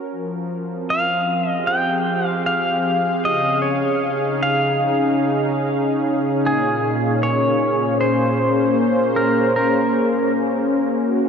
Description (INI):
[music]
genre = ambient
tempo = 76 BPM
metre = 4/4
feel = straight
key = F minor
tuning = A4 = 440 Hz
[part]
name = warm analog pad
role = sustained chords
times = 0.0-11.3 s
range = Bb2 to F5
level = -19 LUFS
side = equal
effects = chorus
[part]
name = pedal steel guitar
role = melody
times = 0.9-10.3 s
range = Ab4 to G5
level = -21 LUFS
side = equal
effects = tape echo
[sound]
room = wet huge ambient reverb, RT60 7.9 s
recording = dark, warm production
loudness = -17 LUFS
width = side -6 dB against mid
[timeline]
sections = 0.0-11.3 A section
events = none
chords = 0.1 Fmadd9; 3.3 Dbadd9; 6.4 Bbm7; 9.6 Gb